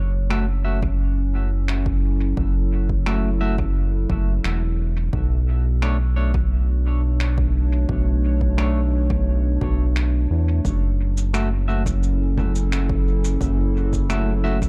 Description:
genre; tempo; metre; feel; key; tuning
ambient dub; 87 BPM; 4/4; straight; F# minor; A4 = 439 Hz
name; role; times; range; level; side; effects
warbly tape-like pad; sustained chords; 0.0-14.7 s; B2 to C#5; -31 LUFS; equal; chorus, built-in reverb
round analog bass; bass; 0.0-14.7 s; E1 to E2; -22 LUFS; equal; none
semi-hollow electric guitar; stabs; 0.3-14.6 s; A3 to E5; -33 LUFS; equal; vintage 12-bit sampler grit, dub echo
electronic finger snaps, cabasa and congas; drums; 0.3-14.7 s; none; -34 LUFS; equal; dub echo
electronic kick drum; drums; 0.8-14.7 s; none; -28 LUFS; equal; overdrive
room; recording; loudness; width
little or no reverb; echo-heavy mix; -21 LUFS; mono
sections
0.0-14.7 A section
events
none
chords
0.0 F#m7; 5.1 Bm9; 10.6 F#m7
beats
0.30 0.99 1.68 | 2.37 3.06 3.75 4.44 | 5.13 5.82 6.51 7.20 | 7.89 8.58 9.27 9.96 | 10.65 11.34 12.03 12.72 | 13.41 14.10

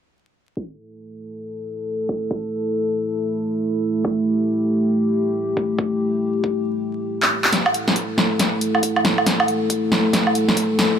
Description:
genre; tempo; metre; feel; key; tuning
deep dubstep; 138 BPM; 4/4; swing 61% on 16ths, half-time; unclear; A4 = 440 Hz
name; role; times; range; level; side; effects
dark analog pad; sustained chords; 0.6-11.0 s; A3 to A4; -21 LUFS; equal; chorus
electronic kick drum; drums; 0.6-10.7 s; none; -29 LUFS; equal; high-pass filter on kick, high-pass filter on room
deep house drum kit; drums; 7.2-10.9 s; handclaps, hi-hat, snare drum, woodblock; -18 LUFS; equal; none
room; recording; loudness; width
moderate huge ambient reverb, RT60 6.1 s; vinyl crackle, low-pass filter; -18 LUFS; side -8 dB against mid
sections
0.6-7.5 A section; 7.5-11.0 B section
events
filter sweep 0.6-7.5; drum fill 7.2-7.5, 7.5-11.0; build-up 7.5-11.0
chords
0.6 A5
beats
| 0.57 1.00 1.44 1.87 | 2.31 2.74 3.18 3.61 | 4.05 4.48 4.92 5.35 | 5.79 6.22 6.66 7.09 | 7.53 7.96 8.39 8.83 | 9.27 9.70 10.13 10.57

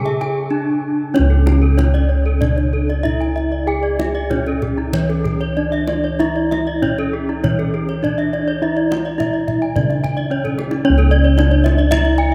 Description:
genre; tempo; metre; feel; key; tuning
Balinese gamelan; 95-112 BPM; 4/4; straight; C# pelog; A4 = 439 Hz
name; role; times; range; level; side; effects
gamelan-type bronze metallophone; melody; 0.0-12.3 s; C#4 to G#4-30c; -23 LUFS; equal; none
gamelan-type bronze metallophone; arpeggios; 0.0-12.3 s; G#4-30c to G#5-30c; -26 LUFS; equal; none
gamelan-type bossed gongs; bass; 0.0-12.3 s; C#2 to C#5; -20 LUFS; equal; none
gamelan-type bronze metallophone; arpeggios; 0.1-12.3 s; E4-30c to G#5-30c; -30 LUFS; equal; none
kendang; percussion; 0.1-12.2 s; none; -28 LUFS; equal; none
room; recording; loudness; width
moderate cathedral reverb, RT60 4.7 s; in a vast, echoing space; -17 LUFS; mono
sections
0.0-1.1 A section; 1.1-10.8 B section; 10.8-12.3 C section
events
drum fill 10.4-10.8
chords
none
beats
0.52 | 1.15 1.78 2.41 3.04 | 3.67 4.30 4.94 5.57 | 6.20 6.82 7.43 8.03 | 8.62 9.19 9.75 10.30 | 10.85 11.38 11.92

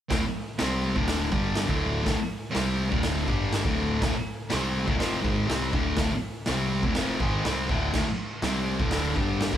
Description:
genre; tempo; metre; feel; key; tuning
garage rock duo or trio; 123 BPM; 4/4; straight; unclear; A4 = 440 Hz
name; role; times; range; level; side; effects
thick fuzz guitar; riff; 0.1-9.6 s; D2 to C4; -26 LUFS; left 1 dB; distortion
growling picked electric bass; bass; 0.1-9.6 s; D1 to C2; -32 LUFS; right 1 dB; overdrive
raw garage drum kit; drums; 0.1-9.6 s; crash cymbal, hi-hat, kick drum, snare drum; -29 LUFS; equal; none
room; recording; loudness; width
light reverb; band playing live in one room; -24 LUFS; side -10 dB against mid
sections
0.1-9.6 A section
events
none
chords
0.1 D5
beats
| 0.12 0.61 1.10 1.59 | 2.07 2.56 3.05 3.54 | 4.03 4.52 5.01 5.50 | 5.98 6.47 6.96 7.45 | 7.94 8.43 8.92 9.41

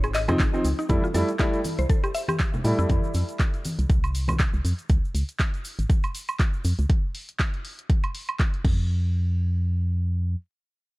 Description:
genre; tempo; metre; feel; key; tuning
deep house; 120 BPM; 4/4; swing 56% on 16ths; unclear; A4 = 444 Hz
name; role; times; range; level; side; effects
mallet-like synth pluck; arpeggios; 0.0-2.9 s; Eb4 to E5; -32 LUFS; left 2 dB; chorus, sidechain pumping, tape echo
organ-like FM bass; bass; 0.0-10.4 s; Ab1 to A2; -24 LUFS; equal; sidechain pumping
deep house drum kit; drums; 0.0-8.8 s; crash cymbal, handclaps, hi-hat, woodblock; -32 LUFS; right 1 dB; none
tube shaker; percussion; 0.0-6.9 s; none; -44 LUFS; right 1 dB; none
felt-muted upright piano; stabs; 0.3-2.9 s; F3 to E4; -27 LUFS; equal; analog delay
congas; percussion; 0.3-4.4 s; none; -32 LUFS; left 1 dB; none
electronic kick drum; drums; 0.4-8.8 s; none; -23 LUFS; equal; none
room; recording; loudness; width
digital ambience; none; -22 LUFS; side -21 dB against mid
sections
0.0-8.9 A section; 8.9-11.0 B section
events
drop 0.0-8.9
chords
0.0 Dbmaj9 (rootless); 0.9 Fmaj9; 4.9 Db; 8.6 N.C.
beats
0.40 | 0.90 1.40 1.90 2.40 | 2.90 3.40 3.90 4.40 | 4.90 5.40 5.90 6.40 | 6.90 7.40 7.90 8.40 | 8.90 9.40 9.90

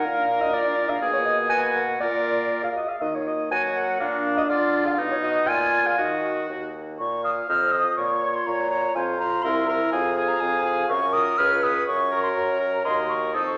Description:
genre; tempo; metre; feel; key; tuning
quick classical-period movement for wind quintet; 122 BPM; 2/4; straight; Eb minor, Bb minor from 7.0 s; A4 = 440 Hz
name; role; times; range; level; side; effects
hollow concert flute; melody; 0.0-13.6 s; F4 to F6; -29 LUFS; equal; none
warm oboe; second line; 0.0-13.6 s; D4 to F5; -30 LUFS; equal; none
dark clarinet; accompaniment; 0.0-13.6 s; Bb4 to Ab5; -28 LUFS; equal; none
mellow French horn; accompaniment; 0.0-13.6 s; Bb3 to Gb4; -36 LUFS; equal; none
warm bassoon; bass; 0.0-13.6 s; C2 to Gb3; -32 LUFS; equal; none
room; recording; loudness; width
wet recital hall reverb, RT60 1.2 s; none; -23 LUFS; mono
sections
0.0-7.0 A section; 7.0-13.6 B section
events
none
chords
0.0 Bb; 1.0 B5; 2.0 Bb; 3.0 Ebm; 4.0 Bb; 5.0 B; 5.5 Bb7; 6.0 Ebm; 7.0 Bbm; 7.5 F5; 8.0 Bbm; 8.9 F5; 9.4 C7; 9.9 Fm; 10.9 Gbmaj7; 11.4 Db7; 11.9 Gb; 12.9 Ebm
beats
| 0.05 0.53 | 1.01 1.50 | 2.00 2.51 | 3.01 3.51 | 4.00 4.49 | 4.98 5.48 | 5.98 6.49 | 6.99 7.48 | 7.97 8.46 | 8.95 9.43 | 9.92 10.41 | 10.89 11.38 | 11.87 12.36 | 12.85 13.35

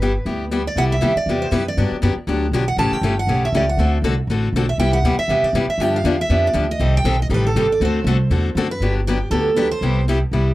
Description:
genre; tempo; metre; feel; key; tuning
acoustic string swing (jazz manouche); 239 BPM; 4/4; swing 56% on 8ths; G major; A4 = 440 Hz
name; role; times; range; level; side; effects
picked steel-string acoustic guitar; melody; 0.0-10.0 s; G4 to A5; -21 LUFS; right 3 dB; none
picked steel-string acoustic guitar; accompaniment; 0.0-10.5 s; C3 to A4; -21 LUFS; left 3 dB; none
upright bass; bass; 0.0-10.5 s; G1 to G2; -20 LUFS; equal; none
room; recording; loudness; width
little or no reverb; dry, close 1970s-style studio recording; -16 LUFS; side -16 dB against mid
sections
0.8-8.8 A section; 8.8-10.5 B section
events
none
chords
0.0 G6; 0.8 Cmaj7; 1.8 Gmaj7; 2.8 A7; 3.8 D7; 4.8 Cmaj7; 5.8 G7; 6.8 Cm6; 7.8 D7; 8.8 Gmaj7; 9.8 Cmaj7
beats
0.01 0.26 0.51 | 0.76 1.01 1.27 1.52 | 1.77 2.02 2.27 2.52 | 2.78 3.03 3.28 3.53 | 3.78 4.04 4.29 4.54 | 4.79 5.04 5.29 5.54 | 5.80 6.05 6.30 6.55 | 6.80 7.05 7.30 7.55 | 7.80 8.06 8.31 8.56 | 8.81 9.06 9.31 9.56 | 9.81 10.06 10.31

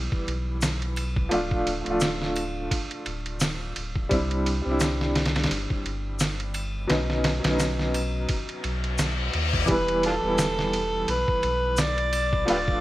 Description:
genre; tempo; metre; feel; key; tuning
trip hop; 86 BPM; 4/4; swing 56% on 16ths; E phrygian; A4 = 441 Hz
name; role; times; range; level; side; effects
warm upright piano; accompaniment; 0.0-12.8 s; E3 to F4; -28 LUFS; equal; tremolo, low-pass filter, tape echo
warm sub bass; bass; 0.0-12.8 s; D1 to D#2; -29 LUFS; equal; none
trip hop sampler-style drum kit; drums; 0.1-12.8 s; kick drum, ride cymbal, snare drum; -28 LUFS; equal; none
tube shaker and triangle; percussion; 0.6-12.3 s; none; -38 LUFS; left 2 dB; none
reverse cymbal; sound effects; 8.6-9.7 s; none; -31 LUFS; left 5 dB; none
overdriven harmonica; melody; 9.7-12.8 s; D4 to D5; -25 LUFS; equal; none
room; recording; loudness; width
light reverb, small room ambience; vinyl crackle; -23 LUFS; side -16 dB against mid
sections
0.0-12.8 A section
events
reverse cymbal 8.6-9.7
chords
0.0 Em; 1.3 Dm; 4.1 Cadd9; 6.9 Badd9; 9.7 Em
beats
0.62 | 1.32 2.02 2.71 3.41 | 4.11 4.81 5.50 6.20 | 6.90 7.60 8.29 8.99 | 9.69 10.39 11.09 11.78 | 12.48

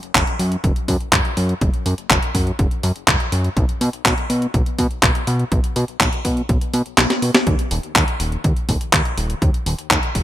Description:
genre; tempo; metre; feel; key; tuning
italo disco; 123 BPM; 4/4; straight; unclear; A4 = 438 Hz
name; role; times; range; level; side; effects
clean 12-bit digital drum machine; drums; 0.0-10.2 s; handclaps, hi-hat, snare drum; -18 LUFS; equal; overdrive
fat analog bass; bass; 0.2-10.2 s; Eb1 to Cb3; -21 LUFS; equal; ping-pong delay
electronic kick drum; drums; 0.2-10.2 s; none; -20 LUFS; equal; none
room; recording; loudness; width
light reverb; bright 1980s-style digital production; -16 LUFS; side -13 dB against mid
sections
0.0-10.2 A section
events
kick drops out 7.0-7.5; drum fill 7.0-7.5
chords
none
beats
0.15 0.64 1.13 | 1.61 2.10 2.59 3.08 | 3.57 4.05 4.54 5.03 | 5.52 6.00 6.49 6.98 | 7.47 7.96 8.44 8.93 | 9.42 9.91

